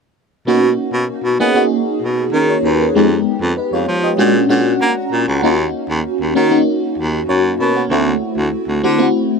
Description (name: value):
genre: pop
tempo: 97 BPM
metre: 4/4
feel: straight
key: B major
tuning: A4 = 441 Hz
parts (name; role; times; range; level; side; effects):
- FM electric piano with soft pad layer; accompaniment; 0.5-9.4 s; Ab3 to A#5; -15 LUFS; left 1 dB; phaser, lush chorus
- breathy baritone saxophone; bass; 0.5-9.1 s; C#2 to B3; -17 LUFS; right 1 dB; none
room: light reverb, small room ambience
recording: none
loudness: -13 LUFS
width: side -5 dB against mid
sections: 0.5-9.4 A section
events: FM electric piano fill 4.2-5.4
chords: 0.5 Bmaj9; 2.9 Fm7b5; 4.2 A#7alt; 5.4 D#m7; 7.9 D9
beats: | 0.47 1.09 1.71 2.33 | 2.95 3.57 4.19 4.81 | 5.42 6.04 6.67 7.29 | 7.91 8.53 9.14